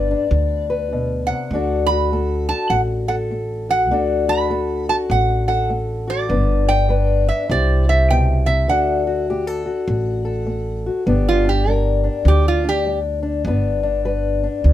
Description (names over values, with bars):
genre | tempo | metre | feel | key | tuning
acoustic country blues, solo or duo | 100 BPM | 4/4 | swing 62% on 8ths | G major | A4 = 440 Hz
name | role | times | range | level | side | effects
metal-body resonator slide guitar | melody | 0.0-13.0 s | F4 to B5 | -21 LUFS | right 3 dB | none
fingerpicked old ladder-braced acoustic guitar | accompaniment | 0.0-14.7 s | G2 to C5 | -21 LUFS | left 4 dB | none
upright bass | bass | 0.0-14.7 s | G1 to D2 | -20 LUFS | equal | none
room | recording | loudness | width
light reverb | minimal, uncompressed stereo recording | -16 LUFS | side -13 dB against mid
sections
0.0-11.1 A section; 11.1-14.7 B section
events
resonator guitar played with a steel bar solo 11.1-14.7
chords
0.0 G; 1.5 D; 6.3 G; 7.5 C; 8.7 D; 11.1 G